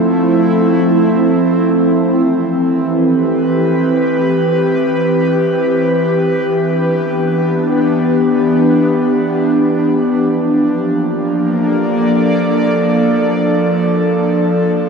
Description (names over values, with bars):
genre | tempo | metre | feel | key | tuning
ambient | free time | none | none | unclear | A4 = 441 Hz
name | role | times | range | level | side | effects
airy breathy pad | solo | 0.0-14.9 s | E3 to D5 | -12 LUFS | equal | chorus
room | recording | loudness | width
wet cathedral reverb, RT60 5.6 s | none | -12 LUFS | side -5 dB against mid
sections
0.0-14.9 A section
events
none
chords
0.0 Fmaj7; 2.1 Cmaj7; 6.2 Em7; 10.3 Bbmaj7; 14.3 F